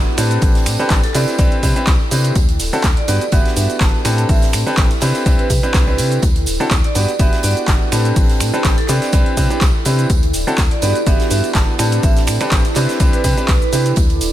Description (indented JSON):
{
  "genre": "piano house",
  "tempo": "124 BPM",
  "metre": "4/4",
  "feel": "swing 54% on 16ths",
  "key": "unclear",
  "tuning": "A4 = 444 Hz",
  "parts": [
    { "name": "clear baby grand piano", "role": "riff", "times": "0.0-13.9 s", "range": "B3 to B4", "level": "-21 LUFS", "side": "equal", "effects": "sidechain pumping, tape echo" },
    { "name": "organ-like FM bass", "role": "bass", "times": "0.0-14.3 s", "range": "D1 to C3", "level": "-18 LUFS", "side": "equal", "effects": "sidechain pumping" },
    { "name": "deep dark ambient pad", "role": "texture", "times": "0.0-14.3 s", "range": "E4 to G5", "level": "-26 LUFS", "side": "right 2 dB", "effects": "chorus, built-in reverb, sidechain pumping" },
    { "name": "tambourine", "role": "percussion", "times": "0.1-14.3 s", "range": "none", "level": "-30 LUFS", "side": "right 3 dB", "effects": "none" },
    { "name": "big rock drum kit", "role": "drums", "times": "0.2-14.3 s", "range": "hi-hat, snare drum", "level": "-30 LUFS", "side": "right 2 dB", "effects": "none" },
    { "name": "punchy analog drum machine", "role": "drums", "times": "0.2-14.3 s", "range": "finger snaps, handclaps, hi-hat, shaker", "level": "-23 LUFS", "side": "right 1 dB", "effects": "none" },
    { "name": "electronic kick drum", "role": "drums", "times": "0.4-14.1 s", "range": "none", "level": "-15 LUFS", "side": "equal", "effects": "none" },
    { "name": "vibraphone with hard mallets", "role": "melody", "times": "1.0-13.8 s", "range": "A4 to A5", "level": "-26 LUFS", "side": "right 5 dB", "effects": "tape echo" }
  ],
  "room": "studio ambience",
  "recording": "none",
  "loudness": "-13 LUFS",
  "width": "side -13 dB against mid",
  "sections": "0.0-14.3 A section",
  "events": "none",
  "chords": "0.2 Am11; 1.1 Cmaj9; 2.4 D9; 3.1 Gmaj7; 4.0 Am11; 5.0 Cmaj9; 6.2 D9; 7.0 Gmaj7; 7.9 Am11; 8.9 Cmaj9; 10.1 D9; 10.8 Gmaj7; 11.8 Am11; 12.8 Cmaj9"
}